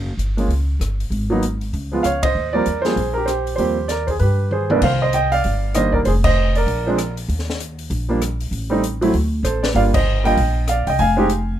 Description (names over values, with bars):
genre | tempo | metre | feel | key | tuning
jazz piano trio | 195 BPM | 4/4 | swing 61% on 8ths | Eb major, C minor from 4.8 s | A4 = 440 Hz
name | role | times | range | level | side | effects
upright bass | bass | 0.0-11.6 s | F1 to G2 | -21 LUFS | equal | none
open jazz drum kit | drums | 0.2-11.4 s | crash cymbal, hi-hat, kick drum, ride cymbal, rim click, snare drum, toms | -26 LUFS | left 2 dB | none
warm baby grand piano | melody | 0.4-11.6 s | C2 to Ab5 | -18 LUFS | right 2 dB | none
room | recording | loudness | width
little or no reverb | minimal, uncompressed stereo recording | -17 LUFS | side -11 dB against mid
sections
0.0-4.8 A section; 4.8-11.6 B section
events
band accent 2.2, 6.2, 9.9; drum fill 4.5-4.8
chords
0.0 Gb5; 1.1 N.C.; 1.7 Db; 2.4 Eb69; 4.2 G; 4.8 Cm7; 6.0 F7(no3); 6.7 Bb; 7.3 Eb5; 8.5 Am; 9.1 D5; 9.7 Gm7; 11.0 Fm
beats
0.19 0.50 0.81 | 1.12 1.43 1.73 2.04 | 2.35 2.66 2.97 3.27 | 3.58 3.89 4.20 4.51 | 4.82 5.12 5.43 5.74 | 6.05 6.36 6.67 6.97 | 7.28 7.59 7.90 8.21 | 8.52 8.82 9.13 9.44 | 9.75 10.06 10.37 10.67 | 10.98 11.29